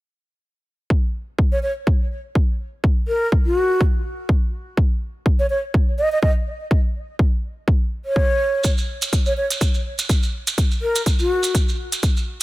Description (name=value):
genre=bass house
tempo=124 BPM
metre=4/4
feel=swing 56% on 16ths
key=unclear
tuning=A4 = 440 Hz
part: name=electronic kick drum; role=drums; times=0.9-12.1 s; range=none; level=-18 LUFS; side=equal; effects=none
part: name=breathy mellow concert flute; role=melody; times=1.5-11.5 s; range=Gb4 to Eb5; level=-22 LUFS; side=equal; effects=digital delay
part: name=electronic hi-hat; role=drums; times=8.6-12.4 s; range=none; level=-26 LUFS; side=right 2 dB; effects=none
part: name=maracas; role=percussion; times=8.6-12.4 s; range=none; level=-26 LUFS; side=right 3 dB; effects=none
room=studio ambience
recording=none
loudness=-18 LUFS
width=side -18 dB against mid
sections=0.9-12.4 A section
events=none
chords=none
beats=| 0.90 1.39 1.87 2.35 | 2.84 3.32 3.81 4.29 | 4.77 5.26 5.74 6.22 | 6.71 7.19 7.68 8.16 | 8.64 9.13 9.61 10.10 | 10.58 11.06 11.55 12.03